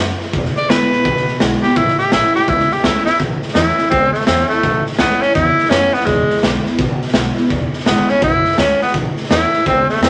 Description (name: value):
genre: rockabilly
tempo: 167 BPM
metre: 4/4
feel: swing 63% on 8ths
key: A major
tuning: A4 = 441 Hz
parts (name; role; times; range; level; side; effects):
- picked steel-string acoustic guitar; accompaniment; 0.0-10.1 s; E2 to E4; -23 LUFS; equal; none
- upright bass; bass; 0.0-10.1 s; E1 to F#2; -26 LUFS; equal; none
- raw garage drum kit; drums; 0.2-10.1 s; hi-hat, kick drum, snare drum; -20 LUFS; equal; none
- breathy tenor saxophone; melody; 0.6-10.1 s; G#3 to D5; -17 LUFS; equal; none
room: moderate studio reverb, RT60 0.8 s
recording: none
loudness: -15 LUFS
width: mono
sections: 0.0-3.2 A section; 3.2-10.1 B section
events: drum fill 3.0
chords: 0.3 E7; 1.8 A; 6.1 E7; 8.9 A